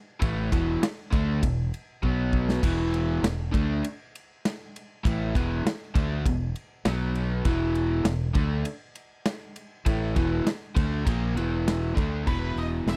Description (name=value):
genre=classic rock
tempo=100 BPM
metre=4/4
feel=straight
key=unclear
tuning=A4 = 440 Hz
part: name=overdriven electric guitar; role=riff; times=0.2-13.0 s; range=E2 to D4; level=-31 LUFS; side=equal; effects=none
part: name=growling fingered electric bass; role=bass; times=0.2-13.0 s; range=E1 to D2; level=-30 LUFS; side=equal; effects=overdrive
part: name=big rock drum kit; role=drums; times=0.2-13.0 s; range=crash cymbal, hi-hat, kick drum, ride cymbal, snare drum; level=-30 LUFS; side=equal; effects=none
part: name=octave-fuzz lead guitar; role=melody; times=12.3-13.0 s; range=B4 to E5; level=-37 LUFS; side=equal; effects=distortion, slapback echo
room=little or no reverb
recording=dry, close 1970s-style studio recording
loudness=-27 LUFS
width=mono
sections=0.0-12.3 A section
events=drum fill 2.0-2.6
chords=0.0 E5; 2.0 B5; 2.6 E5; 6.8 B5; 7.4 E5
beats=| 0.21 0.81 1.42 2.02 | 2.62 3.23 3.83 4.43 | 5.04 5.64 6.24 6.84 | 7.44 8.04 8.65 9.25 | 9.85 10.45 11.06 11.66 | 12.26 12.87